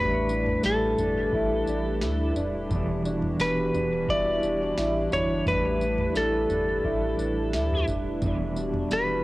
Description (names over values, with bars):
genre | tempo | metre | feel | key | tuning
dream pop | 87 BPM | 4/4 | straight | unclear | A4 = 441 Hz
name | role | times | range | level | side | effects
clean lap steel guitar | melody | 0.0-9.2 s | A4 to D5 | -26 LUFS | equal | cassette tape, analog delay
mellow electric guitar | accompaniment | 0.0-9.2 s | E2 to E4 | -33 LUFS | right 2 dB | tremolo, wide subtle chorus, cassette tape
hollow soft pad | sustained chords | 0.0-9.2 s | E3 to B4 | -32 LUFS | equal | chorus, cassette tape
mellow electric guitar | arpeggios | 0.0-9.2 s | E2 to E4 | -31 LUFS | left 1 dB | analog chorus, cassette tape, analog delay
warm sub bass | bass | 0.0-9.2 s | D1 to D2 | -32 LUFS | equal | transformer saturation
booming analog drum machine | drums | 0.3-9.1 s | kick drum, snare drum, tambourine, toms | -32 LUFS | equal | none
room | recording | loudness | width
light reverb | home recording on cassette | -23 LUFS | side -18 dB against mid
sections
0.0-9.2 A section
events
none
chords
0.0 A7sus4; 2.7 Em7; 5.5 A7sus4; 8.2 Em7